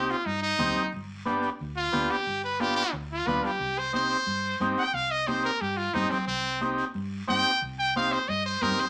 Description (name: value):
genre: latin, cumbia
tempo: 180 BPM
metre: 4/4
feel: straight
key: C harmonic minor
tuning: A4 = 439 Hz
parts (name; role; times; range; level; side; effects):
- brilliant trumpet; melody; 0.0-8.9 s; C4 to G5; -29 LUFS; equal; none
- overdriven combo organ; accompaniment; 0.0-8.9 s; B3 to G4; -31 LUFS; equal; none
- hollow-body short-scale fingered electric bass; bass; 0.0-8.8 s; G1 to G2; -39 LUFS; equal; none
- guiro; percussion; 0.1-8.9 s; none; -50 LUFS; equal; none
- congas; percussion; 0.3-8.9 s; none; -38 LUFS; equal; none
room: wet studio reverb, RT60 0.6 s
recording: none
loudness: -28 LUFS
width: mono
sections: 0.0-8.9 A section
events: trumpet solo 0.0-8.9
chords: 0.0 Cm; 0.9 G7; 3.6 Cm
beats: 0.26 0.60 | 0.93 1.27 1.60 1.94 | 2.27 2.60 2.94 3.27 | 3.61 3.94 4.28 4.61 | 4.95 5.28 5.61 5.95 | 6.28 6.62 6.95 7.28 | 7.62 7.95 8.29 8.62